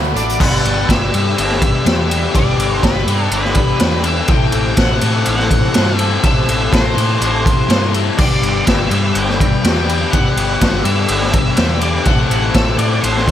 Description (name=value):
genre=rock, shoegaze and dream pop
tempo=123 BPM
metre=4/4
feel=straight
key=G major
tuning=A4 = 442 Hz
part: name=brassy analog pad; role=sustained chords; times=0.0-13.3 s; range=G4 to F#6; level=-26 LUFS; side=right 1 dB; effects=chorus, tremolo
part: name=overdriven electric guitar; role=riff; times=0.0-13.3 s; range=G2 to A4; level=-20 LUFS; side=left 15 dB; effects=wide subtle chorus
part: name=hollow-body short-scale fingered electric bass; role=bass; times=0.0-13.3 s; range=G1 to A2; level=-19 LUFS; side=equal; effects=none
part: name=octave-fuzz lead guitar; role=melody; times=0.2-13.3 s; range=B4 to G5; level=-22 LUFS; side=right 2 dB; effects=distortion, digital delay
part: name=raw garage drum kit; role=drums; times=0.2-13.3 s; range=crash cymbal, hi-hat, kick drum, ride cymbal, snare drum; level=-15 LUFS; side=equal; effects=none
room=studio ambience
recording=none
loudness=-12 LUFS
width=side -11 dB against mid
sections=0.4-13.3 A section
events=none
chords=0.4 G6; 4.3 Am7; 8.2 G6; 12.1 Am7